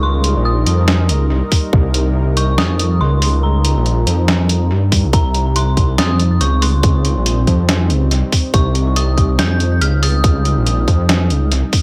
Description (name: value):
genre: deep dubstep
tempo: 141 BPM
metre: 4/4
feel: swing 59% on 16ths, half-time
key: C phrygian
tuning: A4 = 440 Hz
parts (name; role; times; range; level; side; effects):
- dark detuned synth bell; melody; 0.0-10.8 s; Bb5 to G6; -26 LUFS; equal; chorus, phaser, dub echo
- dark analog pad; sustained chords; 0.0-11.8 s; G3 to Bb4; -26 LUFS; equal; chorus
- dark detuned saw bass; bass; 0.0-11.6 s; Bb1 to G2; -17 LUFS; equal; none
- trip hop sampler-style drum kit; drums; 0.2-11.8 s; hi-hat, snare drum; -21 LUFS; equal; overdrive, tape echo
- electronic kick drum; drums; 1.5-1.8, 4.9-11.8 s; none; -16 LUFS; equal; none
room: little or no reverb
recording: echo-heavy mix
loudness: -15 LUFS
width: mono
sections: 0.0-5.1 A section; 5.1-11.8 A section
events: drop 0.0-5.1, 5.1-11.8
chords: 0.0 Cm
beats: | 0.03 0.45 0.88 1.30 | 1.73 2.15 2.58 3.00 | 3.43 3.86 4.28 4.71 | 5.13 5.56 5.98 6.41 | 6.83 7.26 7.69 8.11 | 8.54 8.96 9.39 9.81 | 10.24 10.66 11.09 11.52